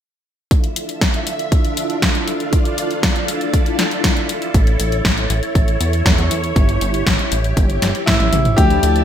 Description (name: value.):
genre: italo disco.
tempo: 119 BPM.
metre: 4/4.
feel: straight.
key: D harmonic minor.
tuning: A4 = 440 Hz.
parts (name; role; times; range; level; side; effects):
string machine, full ensemble; sustained chords; 0.5-9.0 s; F3 to A5; -22 LUFS; equal; phaser, ensemble chorus.
electronic kick drum; drums; 0.5-8.7 s; none; -16 LUFS; equal; small room ambience.
house drum kit; drums; 0.5-9.0 s; hi-hat, snare drum, toms; -20 LUFS; left 1 dB; small room ambience, gated reverb.
chorused synth bass; bass; 4.5-9.0 s; G1 to E2; -18 LUFS; equal; tube saturation.
bright grand piano; melody; 8.1-9.0 s; E4 to G4; -17 LUFS; left 1 dB; tape echo.
mellow synth brass; stabs; 8.6-9.0 s; F3 to E4; -19 LUFS; left 3 dB; chorus.
room: light reverb, digital ambience.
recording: none.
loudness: -14 LUFS.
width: side -9 dB against mid.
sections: 0.5-8.6 A section.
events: drum fill 8.2-8.6.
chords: 0.5 Dmadd9; 4.5 A.